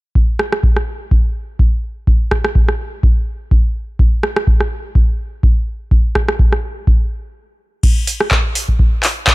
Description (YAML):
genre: house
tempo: 125 BPM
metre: 4/4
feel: swing 55% on 16ths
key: none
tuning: none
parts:
  - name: electronic kick drum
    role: drums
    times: 0.2-9.3 s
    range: none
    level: -13 LUFS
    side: equal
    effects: none
  - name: booming analog drum machine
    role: drums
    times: 0.4-9.3 s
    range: crash cymbal, handclaps, hi-hat, rim click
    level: -17 LUFS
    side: equal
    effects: none
room: little or no reverb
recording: none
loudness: -13 LUFS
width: side -21 dB against mid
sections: 0.2-7.8 A section; 7.8-9.3 B section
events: stop 7.4-7.8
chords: none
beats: | 0.15 0.63 1.11 1.59 | 2.07 2.55 3.03 3.51 | 3.99 4.47 4.95 5.43 | 5.91 6.39 6.87 7.35 | 7.83 8.31 8.79 9.27